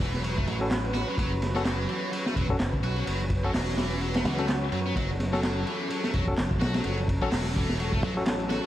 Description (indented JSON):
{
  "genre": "breakbeat, breaks",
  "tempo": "127 BPM",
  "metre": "4/4",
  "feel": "swing 57% on 16ths",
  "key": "F# minor",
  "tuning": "A4 = 441 Hz",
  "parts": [
    { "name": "lush unison pad", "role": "sustained chords", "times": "0.0-8.7 s", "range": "F#3 to B4", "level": "-33 LUFS", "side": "equal", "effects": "chorus, vintage 12-bit sampler grit, sidechain pumping" },
    { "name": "high-gain distorted guitar", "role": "riff", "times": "0.0-8.7 s", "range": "E3 to F#4", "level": "-34 LUFS", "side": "equal", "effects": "distortion, digital delay" },
    { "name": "fingered electric bass", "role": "bass", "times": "0.0-8.6 s", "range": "E1 to F#2", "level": "-30 LUFS", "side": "equal", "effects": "none" },
    { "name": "crunchy breakbeat drum kit", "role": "drums", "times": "0.0-8.6 s", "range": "hi-hat, kick drum, ride cymbal, snare drum", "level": "-29 LUFS", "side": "equal", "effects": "none" },
    { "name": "barky tine electric piano", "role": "stabs", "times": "0.6-8.2 s", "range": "C#4 to A4", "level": "-35 LUFS", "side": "left 2 dB", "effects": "none" },
    { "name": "electronic handclaps", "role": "drums", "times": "0.7-8.4 s", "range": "none", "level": "-39 LUFS", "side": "right 1 dB", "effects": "none" },
    { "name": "swell", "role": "sound effects", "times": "4.2-5.0 s", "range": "none", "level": "-41 LUFS", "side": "right 2 dB", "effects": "none" }
  ],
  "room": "light reverb, small room ambience",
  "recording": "vinyl crackle",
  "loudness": "-25 LUFS",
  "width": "side -13 dB against mid",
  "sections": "0.0-8.7 A section",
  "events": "swell 4.2-5.0",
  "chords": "0.0 F#m"
}